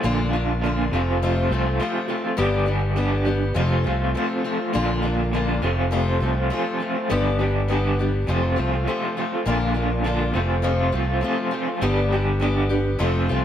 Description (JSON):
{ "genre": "folk rock and heartland rock", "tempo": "102 BPM", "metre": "4/4", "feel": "straight", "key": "unclear", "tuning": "A4 = 440 Hz", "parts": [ { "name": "picked acoustic archtop guitar", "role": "accompaniment", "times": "0.0-13.4 s", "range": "F2 to G4", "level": "-25 LUFS", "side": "left 3 dB", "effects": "none" }, { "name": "mellow tonewheel organ", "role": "sustained chords", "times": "0.0-13.4 s", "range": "A3 to D5", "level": "-34 LUFS", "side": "right 2 dB", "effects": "none" }, { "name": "electric guitar through a small old amp", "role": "riff", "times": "0.0-13.4 s", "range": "F2 to G4", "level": "-24 LUFS", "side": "right 1 dB", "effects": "tremolo" }, { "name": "fingered electric bass", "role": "bass", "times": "0.0-13.4 s", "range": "F1 to C2", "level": "-23 LUFS", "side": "equal", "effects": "none" } ], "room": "light reverb", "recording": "none", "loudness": "-20 LUFS", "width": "side -10 dB against mid", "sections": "0.0-13.4 A section", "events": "none", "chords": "0.0 Bb; 0.9 F; 2.4 G; 3.6 F; 4.7 Bb; 5.6 F; 7.1 G; 8.3 F; 9.5 Bb; 10.3 F; 11.8 G" }